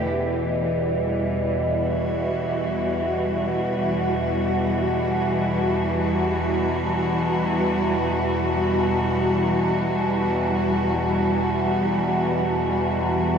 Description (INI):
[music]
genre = dark ambient drone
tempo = free time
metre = none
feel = none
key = E minor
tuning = A4 = 442 Hz
[part]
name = rich studio cello section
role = sustained chords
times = 0.0-13.4 s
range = E3 to F#4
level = -24 LUFS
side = right 1 dB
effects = none
[part]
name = overtone-sweeping drone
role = drone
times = 0.0-13.4 s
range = E2 to B2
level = -23 LUFS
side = equal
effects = chorus, built-in reverb
[sound]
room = wet huge ambient reverb, RT60 7.9 s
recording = in a vast, echoing space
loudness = -20 LUFS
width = side -7 dB against mid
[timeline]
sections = 0.1-13.4 A section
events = none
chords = 0.1 Emadd9